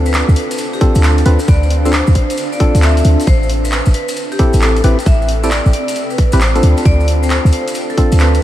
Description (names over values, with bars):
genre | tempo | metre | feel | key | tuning
UK garage, two-step garage | 134 BPM | 4/4 | swing 66% on 16ths | unclear | A4 = 440 Hz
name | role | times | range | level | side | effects
percussive organ stab | stabs | 0.0-8.4 s | C4 to B4 | -19 LUFS | equal | chorus, diffuse ambient delay
short 808-style bass | bass | 0.0-8.4 s | A1 to D2 | -12 LUFS | equal | sidechain pumping
granular cloud pad | texture | 0.0-8.4 s | C4 to G5 | -23 LUFS | equal | built-in reverb, sidechain pumping
vibraphone with medium hard mallets | melody | 0.1-8.4 s | G4 to E5 | -22 LUFS | left 1 dB | ping-pong delay
punchy analog drum machine | drums | 0.1-8.4 s | finger snaps, handclaps, hi-hat | -22 LUFS | equal | none
maracas | percussion | 0.1-8.4 s | none | -29 LUFS | left 3 dB | none
electronic kick drum | drums | 0.8-8.1 s | none | -12 LUFS | equal | none
room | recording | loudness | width
light reverb, digital ambience | vinyl crackle | -10 LUFS | side -13 dB against mid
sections
0.0-8.4 A section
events
none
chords
0.0 Dm7; 3.3 Am7; 6.6 Dm7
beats
0.14 0.59 1.03 | 1.48 1.93 2.38 2.83 | 3.27 3.72 4.17 4.62 | 5.06 5.51 5.96 6.41 | 6.86 7.30 7.75 8.20